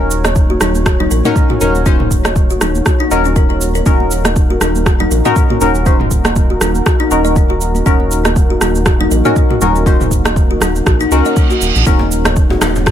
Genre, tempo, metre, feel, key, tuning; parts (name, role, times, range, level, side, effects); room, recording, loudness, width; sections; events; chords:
afro house; 120 BPM; 4/4; swing 56% on 16ths; Eb minor; A4 = 436 Hz
dark analog pad; sustained chords; 0.0-12.9 s; Bb3 to Db5; -22 LUFS; right 1 dB; chorus, sidechain pumping
deep mellow chord stab; stabs; 0.0-12.9 s; Db4 to C5; -18 LUFS; left 3 dB; chorus, sidechain pumping, tape echo
round analog bass; bass; 0.0-12.9 s; Eb1 to Db2; -17 LUFS; equal; sidechain pumping
congas; percussion; 0.0-12.9 s; -23 LUFS; right 3 dB
deep house drum kit; drums; 0.1-12.9 s; cabasa, rim click, toms; -19 LUFS; right 1 dB
kalimba; arpeggios; 0.2-12.9 s; Db4 to Eb5; -19 LUFS; left 3 dB; sidechain pumping, tape echo
electronic kick drum; drums; 0.4-12.9 s; -13 LUFS; equal
reverse cymbal; sound effects; 11.2-11.9 s; -20 LUFS; right 8 dB
djembe; percussion; 11.9-12.8 s; -22 LUFS; left 2 dB
little or no reverb; -10 LUFS; side -10 dB against mid
0.0-12.9 A section
reverse cymbal 11.2-11.9
0.0 Ebm7